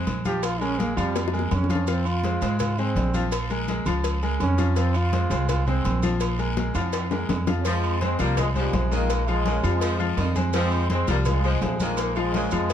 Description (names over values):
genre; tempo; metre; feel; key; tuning
latin, salsa; 166 BPM; 4/4; straight; F minor; A4 = 441 Hz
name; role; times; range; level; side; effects
bright concert grand piano; accompaniment; 0.0-12.7 s; F3 to F5; -28 LUFS; left 4 dB; none
upright bass; bass; 0.0-12.7 s; Bb1 to Ab2; -25 LUFS; right 1 dB; none
agogo bells and timbales; percussion; 0.1-12.7 s; none; -35 LUFS; right 6 dB; none
congas; percussion; 0.1-12.7 s; none; -32 LUFS; left 1 dB; none
cowbell and bongos; percussion; 0.1-12.7 s; none; -33 LUFS; left 8 dB; none
guiro; percussion; 0.1-12.7 s; none; -42 LUFS; left 4 dB; none
maracas; percussion; 0.1-12.7 s; none; -42 LUFS; right 6 dB; none
bright trombone; melody; 0.3-6.2 s; G3 to G4; -28 LUFS; right 4 dB; none
mellow trombone section; melody; 7.6-12.7 s; C3 to Db4; -28 LUFS; left 1 dB; none
clear saxophone section; second line; 7.7-12.7 s; Db3 to G3; -32 LUFS; equal; none
room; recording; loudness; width
light reverb; dark, warm production; -21 LUFS; side -9 dB against mid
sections
0.0-7.7 A section; 7.7-12.7 B section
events
trombone solo 0.0-7.7; drum fill 1.2-1.9, 6.6-7.7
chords
0.4 Bbm7; 1.9 Fm; 3.3 Bbm7; 4.8 Fm; 6.2 Bb5; 7.7 Fm; 12.0 Bbm7